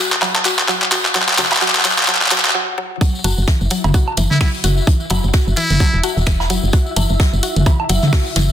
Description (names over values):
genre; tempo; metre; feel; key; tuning
minimal techno; 129 BPM; 4/4; swing 58% on 16ths; unclear; A4 = 440 Hz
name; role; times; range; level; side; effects
mallet-like synth pluck; riff; 0.0-8.4 s; E3 to F#4; -24 LUFS; left 1 dB; chorus, sidechain pumping, ping-pong delay
woody FM bass; bass; 0.1-8.5 s; E1 to F#1; -18 LUFS; equal; tube saturation, sidechain pumping, high-pass filter
garage drum kit; drums; 0.1-8.5 s; finger snaps, handclaps, hi-hat; -15 LUFS; equal; overdrive, high-pass filter on snare, studio reverb, high-pass filter on hats
tambourine; percussion; 0.1-8.5 s; none; -27 LUFS; left 4 dB; none
electronic cowbell, woodblock and toms; percussion; 0.2-8.5 s; none; -21 LUFS; right 1 dB; studio reverb
electronic kick drum; drums; 3.0-8.2 s; none; -14 LUFS; equal; overdrive, studio reverb
jazz brush drum kit; drums; 3.0-8.5 s; hi-hat, snare drum; -28 LUFS; left 2 dB; high-pass filter on hats, studio reverb, high-pass filter on snare, high-pass filter on room
flickering grainy texture; texture; 3.4-8.5 s; E4 to E5; -28 LUFS; equal; built-in reverb, sidechain pumping
trumpet with metal mute; melody; 4.3-6.0 s; E4; -22 LUFS; equal; tape echo
room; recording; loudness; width
moderate digital room reverb, RT60 1.1 s, small room reverb; dense, heavily limited modern master, high-pass filter; -13 LUFS; side -10 dB against mid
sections
0.0-3.0 A section; 3.0-8.5 B section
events
build-up 0.0-3.0; drum fill 0.0-2.5; break 2.5-3.0; drop 3.0-8.5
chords
0.0 N.C.; 3.0 F#7(no3)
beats
0.22 0.69 | 1.15 1.62 2.08 2.55 | 3.01 3.48 3.94 4.41 | 4.87 5.34 5.80 6.27 | 6.73 7.20 7.66 8.13